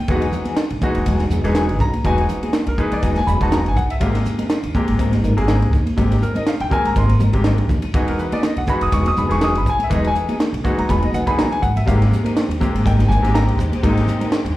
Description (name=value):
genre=electric jazz fusion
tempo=122 BPM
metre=4/4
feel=swing 55% on 16ths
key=unclear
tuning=A4 = 440 Hz
part: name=bright grand piano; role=accompaniment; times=0.0-14.3 s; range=C3 to D#6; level=-21 LUFS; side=left 1 dB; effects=slapback echo
part: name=clean electric guitar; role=stabs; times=0.0-14.5 s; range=F#3 to Bb4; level=-26 LUFS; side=left 2 dB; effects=ensemble chorus, slapback echo
part: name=upright bass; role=bass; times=0.1-14.5 s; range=E1 to Eb2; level=-19 LUFS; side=equal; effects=none
part: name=crisp fusion drum kit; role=drums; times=0.1-14.6 s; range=hi-hat, kick drum, ride cymbal, snare drum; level=-22 LUFS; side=equal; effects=none
part: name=congas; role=percussion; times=0.3-14.3 s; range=none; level=-27 LUFS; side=right 1 dB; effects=slapback echo
part: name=bright studio string section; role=sustained chords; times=11.9-14.6 s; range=Ab3 to G4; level=-29 LUFS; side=left 1 dB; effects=none
room=moderate club reverb, RT60 0.8 s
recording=live gig heard through the venue's PA, club reverb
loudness=-16 LUFS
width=side -16 dB against mid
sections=0.0-14.6 A section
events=drum fill 11.5-11.9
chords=0.1 Emaj9; 4.0 Abmaj9; 7.9 Emaj9; 11.9 Abmaj9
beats=| 0.09 0.58 1.07 1.56 | 2.05 2.54 3.03 3.52 | 4.01 4.51 5.00 5.49 | 5.98 6.47 6.96 7.45 | 7.95 8.44 8.93 9.42 | 9.91 10.40 10.89 11.38 | 11.87 12.36 12.85 13.34 | 13.83 14.32